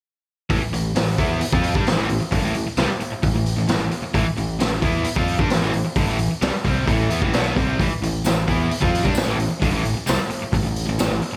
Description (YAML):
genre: classic rock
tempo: 132 BPM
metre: 4/4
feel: straight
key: A minor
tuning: A4 = 440 Hz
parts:
  - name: cranked stack guitar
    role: riff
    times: 0.5-11.3 s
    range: G2 to F4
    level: -28 LUFS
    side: equal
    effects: overdrive
  - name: crunchy overdriven guitar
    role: riff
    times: 0.5-11.4 s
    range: G2 to F4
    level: -28 LUFS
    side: equal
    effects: none
  - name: growling picked electric bass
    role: bass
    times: 0.5-11.4 s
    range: G1 to G2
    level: -28 LUFS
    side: equal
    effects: overdrive
  - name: raw garage drum kit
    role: drums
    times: 0.5-11.3 s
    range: hi-hat, kick drum, snare drum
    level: -24 LUFS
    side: equal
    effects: none
  - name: tambourine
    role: percussion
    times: 8.2-11.1 s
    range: none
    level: -38 LUFS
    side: equal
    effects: none
room: light reverb, small room ambience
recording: none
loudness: -21 LUFS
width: mono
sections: 0.5-11.4 A section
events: none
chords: 0.5 Am